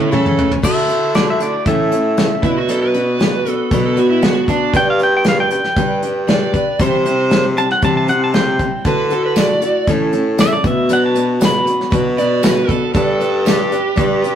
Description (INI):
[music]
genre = folk rock and heartland rock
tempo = 117 BPM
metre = 4/4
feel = straight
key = D major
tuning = A4 = 440 Hz
[part]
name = pedal steel guitar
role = melody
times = 0.0-12.9 s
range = D5 to B5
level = -18 LUFS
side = equal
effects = none
[part]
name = overdriven slide guitar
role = second line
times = 0.0-14.3 s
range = D4 to D5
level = -19 LUFS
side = right 4 dB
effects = none
[part]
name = picked steel-string acoustic guitar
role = accompaniment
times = 0.0-14.4 s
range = A2 to C5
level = -20 LUFS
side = left 2 dB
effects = none
[part]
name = mellow baritone saxophone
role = bass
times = 0.0-14.4 s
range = G2 to D3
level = -18 LUFS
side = equal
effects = none
[part]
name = soft brush drum kit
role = drums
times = 0.0-14.4 s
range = crash cymbal, hi-hat, kick drum, snare drum, toms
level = -18 LUFS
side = equal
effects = none
[part]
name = tambourine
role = percussion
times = 9.4-13.6 s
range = none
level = -30 LUFS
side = right 5 dB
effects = none
[sound]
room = moderate studio reverb, RT60 0.6 s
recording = rough rehearsal-room recording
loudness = -13 LUFS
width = side -9 dB against mid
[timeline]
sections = 0.6-14.4 A section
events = drum fill 0.0-0.6; pedal steel guitar solo 0.6-14.4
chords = 0.0 Aadd9; 0.6 Dadd9; 1.7 A; 2.4 Bm; 4.7 G; 6.8 C; 8.9 Dadd9; 9.9 A; 10.6 Bm; 13.0 G